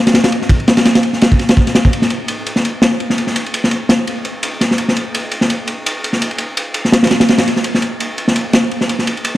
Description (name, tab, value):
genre	drum and bass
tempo	168 BPM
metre	4/4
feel	swing 55% on 16ths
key	none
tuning	none
part	crunchy breakbeat drum kit	drums	0.1-9.4 s	kick drum, ride cymbal, snare drum	-12 LUFS	equal	none
room	light reverb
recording	dark, warm production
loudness	-12 LUFS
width	side -15 dB against mid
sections	0.0-1.9 A section; 1.9-9.4 B section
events	drop 0.0-1.9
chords	none